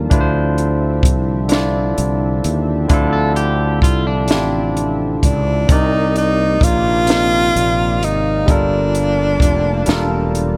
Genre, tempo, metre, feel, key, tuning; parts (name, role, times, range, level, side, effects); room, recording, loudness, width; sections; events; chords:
slow six-eight R&B; 43 BPM (dotted quarters); 6/8; straight; D minor; A4 = 435 Hz
barky tine electric piano; accompaniment; 0.0-10.6 s; C3 to F5; -23 LUFS; equal
chorused pulse-width pad; sustained chords; 0.0-10.6 s; C3 to A5; -31 LUFS; equal
sustaining fretless electric bass; bass; 0.0-10.6 s; E1 to Eb2; -21 LUFS; equal
compact cocktail drum kit; drums; 0.1-10.6 s; hi-hat, kick drum, snare drum; -18 LUFS; equal
electric guitar at the edge of break-up; second line; 3.1-5.4 s; D4 to A4; -26 LUFS; equal
breathy tenor saxophone; melody; 5.2-10.4 s; D4 to F4; -19 LUFS; equal
little or no reverb; -16 LUFS; mono
0.0-10.6 A section
0.1 Dm9; 5.7 Cm9; 8.5 Gm9